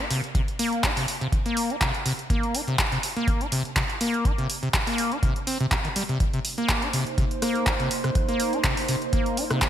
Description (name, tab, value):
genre	acid house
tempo	123 BPM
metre	4/4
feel	swing 54% on 16ths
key	C minor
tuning	A4 = 442 Hz
part	acid bass, saw	riff	0.0-9.6 s	C3 to Eb4	-27 LUFS	left 1 dB	overdrive, wide subtle chorus, sidechain pumping, ping-pong delay
part	punchy analog drum machine	drums	0.1-9.7 s	handclaps, hi-hat, rim click	-27 LUFS	equal	overdrive, studio reverb, gated reverb
part	electronic kick drum	drums	0.3-9.7 s	none	-26 LUFS	equal	overdrive, studio reverb
part	warbly tape-like pad	sustained chords	6.8-9.7 s	Bb3 to C5	-30 LUFS	right 3 dB	chorus, built-in reverb, sidechain pumping
room	moderate lush hall reverb, RT60 1.7 s, digital ambience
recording	bright 1980s-style digital production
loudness	-22 LUFS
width	side -10 dB against mid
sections	0.0-9.7 A section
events	none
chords	0.0 Cm7